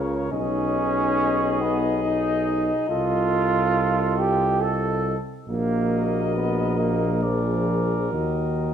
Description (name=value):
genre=classical, brass quintet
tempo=69 BPM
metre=3/4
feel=rubato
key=Eb minor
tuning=A4 = 440 Hz
part: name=dark trumpet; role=melody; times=0.0-8.7 s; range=Db5 to Eb5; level=-30 LUFS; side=left 8 dB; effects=none
part: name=mellow flugelhorn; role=second line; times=0.0-8.7 s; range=Ab4 to Bb4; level=-31 LUFS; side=right 3 dB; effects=none
part: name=clear trombone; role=accompaniment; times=0.0-8.7 s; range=Db3 to A4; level=-25 LUFS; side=right 3 dB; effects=none
part: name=mellow French horn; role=accompaniment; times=0.0-8.7 s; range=Eb4 to Ab4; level=-30 LUFS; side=left 6 dB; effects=none
part: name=warm tuba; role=bass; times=0.0-8.7 s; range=Bb1 to Eb2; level=-26 LUFS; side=right 2 dB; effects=none
room=moderate recital hall reverb, RT60 1.6 s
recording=dark, warm production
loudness=-20 LUFS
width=side -8 dB against mid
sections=0.0-8.7 A section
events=none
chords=0.3 Abm/Cb; 2.9 F7/C; 5.5 Ebm/Bb; 7.2 Bb7; 8.1 Ebm